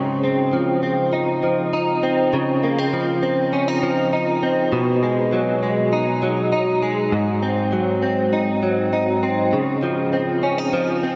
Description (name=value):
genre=dream pop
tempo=100 BPM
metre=4/4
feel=straight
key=Db major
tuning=A4 = 441 Hz
part: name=direct-recorded clean electric guitar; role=solo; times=0.0-11.2 s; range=Ab2 to Eb4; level=-20 LUFS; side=equal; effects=ensemble chorus, tape echo
room=wet huge ambient reverb, RT60 7.2 s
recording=dreamy mix soaked in reverb, nothing above 7.8 kHz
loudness=-20 LUFS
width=mono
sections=0.0-9.5 A section; 9.5-11.2 B section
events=none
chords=0.0 Dbmaj9; 4.7 Cb6; 7.1 Ab7; 9.5 Dbmaj9